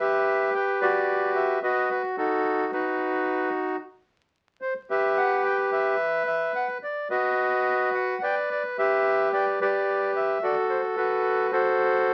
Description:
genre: tango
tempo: 110 BPM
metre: 4/4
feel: rubato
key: E minor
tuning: A4 = 440 Hz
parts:
  - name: bandoneon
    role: solo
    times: 0.0-12.1 s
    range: D#4 to G5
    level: -25 LUFS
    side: equal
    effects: none
room: wet studio ambience, RT60 0.5 s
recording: very old 78 rpm record, vinyl crackle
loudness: -25 LUFS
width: mono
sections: 0.0-12.1 A section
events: none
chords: 0.0 Emadd9; 1.6 B/D#; 3.8 G6; 6.0 N.C.; 7.1 B; 8.2 Em7; 10.4 F#dim

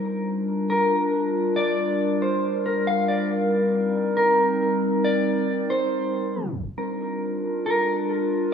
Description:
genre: hip hop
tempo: 138 BPM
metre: 4/4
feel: half-time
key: G minor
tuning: A4 = 442 Hz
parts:
  - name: warbly tape-like pad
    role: sustained chords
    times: 0.0-8.5 s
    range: G3 to Bb4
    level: -23 LUFS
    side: equal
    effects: chorus, built-in reverb
  - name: mellow electric guitar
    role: melody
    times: 0.7-8.1 s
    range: Bb4 to F5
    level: -25 LUFS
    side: left 1 dB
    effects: lush chorus, low-pass filter, analog delay
room: wet lush hall reverb, RT60 2.2 s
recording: dreamy mix soaked in reverb, tape stop, studio reverb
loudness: -21 LUFS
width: side -7 dB against mid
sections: 0.0-6.8 A section; 6.8-8.5 B section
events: tape stop 6.3-6.8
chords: 0.0 Gm7; 3.3 Cm7; 6.8 Gm7

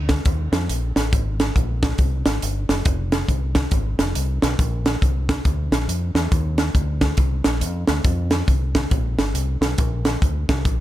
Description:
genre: uptempo gospel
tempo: 139 BPM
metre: 4/4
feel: swing 62% on 8ths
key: unclear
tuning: A4 = 440 Hz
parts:
  - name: deep dub fingered electric bass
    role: bass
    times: 0.0-10.8 s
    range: F1 to F2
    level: -23 LUFS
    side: equal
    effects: none
  - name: crisp fusion drum kit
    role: drums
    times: 0.1-10.8 s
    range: hi-hat, kick drum, snare drum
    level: -20 LUFS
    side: equal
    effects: none
room: light reverb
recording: none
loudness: -18 LUFS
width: side -14 dB against mid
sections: 0.0-10.8 A section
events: none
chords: none

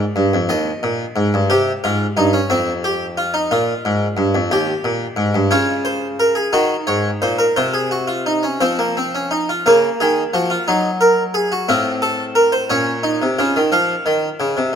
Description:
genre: classical, baroque-style 3-part fugue for harpsichord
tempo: 59 BPM (dotted quarters)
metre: 6/8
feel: straight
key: Bb minor from 5.5 s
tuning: A4 = 438 Hz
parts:
  - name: harpsichord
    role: solo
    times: 0.0-14.8 s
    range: Eb2 to F5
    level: -15 LUFS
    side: equal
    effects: none
room: moderate concert hall reverb, RT60 2.4 s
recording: close, detailed microphones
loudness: -15 LUFS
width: side -8 dB against mid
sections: 0.0-9.7 A section; 9.7-13.7 B section; 13.7-14.8 A section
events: none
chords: 0.5 Eb; 1.5 Cm; 2.5 F5; 3.5 Bb5; 4.5 Eb; 5.5 Bbm/Db; 6.5 Cdim; 7.6 F5/C; 8.6 F5; 9.7 Bbm/Db; 10.7 Ebm/Gb; 11.7 F/A; 12.7 Bbm; 13.7 Db

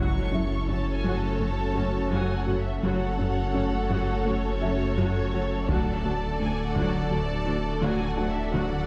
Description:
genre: cinematic, hybrid orchestral and electronic film score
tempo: 84 BPM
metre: 4/4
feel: straight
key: F# minor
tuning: A4 = 440 Hz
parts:
  - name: rich symphonic violin section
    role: melody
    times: 0.0-8.9 s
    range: C#5 to C#6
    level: -38 LUFS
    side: equal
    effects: none
  - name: clear symphonic violin section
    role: second line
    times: 0.0-8.9 s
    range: A4 to D5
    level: -38 LUFS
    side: equal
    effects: none
  - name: rich symphonic viola section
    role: accompaniment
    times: 0.0-8.9 s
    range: F#3 to F#4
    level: -36 LUFS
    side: equal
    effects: none
  - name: airy breathy pad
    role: sustained chords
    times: 0.0-8.9 s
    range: A3 to A4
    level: -34 LUFS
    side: equal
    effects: chorus
  - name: soft round pluck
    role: arpeggios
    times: 0.0-8.8 s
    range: D3 to F#4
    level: -37 LUFS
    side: equal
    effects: none
  - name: clear symphonic cello section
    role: bass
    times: 0.0-8.6 s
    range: D2 to F#2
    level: -34 LUFS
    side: equal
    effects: none
  - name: dark detuned saw bass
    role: bass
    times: 0.0-8.9 s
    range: D1 to F#1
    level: -32 LUFS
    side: equal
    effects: none
  - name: felt-muted upright piano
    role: texture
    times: 0.3-8.9 s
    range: E4 to A5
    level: -42 LUFS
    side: equal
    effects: none
  - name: taiko ensemble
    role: drums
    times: 5.7-7.1 s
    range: none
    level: -34 LUFS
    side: equal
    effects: none
room: wet scoring stage reverb, RT60 1.9 s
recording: heard from further back in the room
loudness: -27 LUFS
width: mono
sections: 0.0-8.9 A section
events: none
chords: 0.0 F#m; 5.7 D

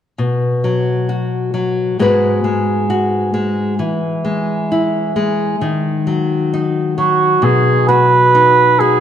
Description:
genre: folk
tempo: 66 BPM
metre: 4/4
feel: straight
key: B major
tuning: A4 = 438 Hz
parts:
  - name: nylon-string guitar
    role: accompaniment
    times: 0.2-9.0 s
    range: G#2 to B4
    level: -15 LUFS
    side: left 2 dB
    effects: none
  - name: dark cor anglais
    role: melody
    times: 7.0-9.0 s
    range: F#4 to B4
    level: -10 LUFS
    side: right 4 dB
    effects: none
room: wet concert hall reverb, RT60 2.4 s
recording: dark, warm production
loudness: -13 LUFS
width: side -9 dB against mid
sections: 0.2-7.4 A section; 7.4-9.0 B section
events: none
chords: 0.2 B5; 2.0 G#m7; 3.8 E; 5.6 B/D#; 7.4 B

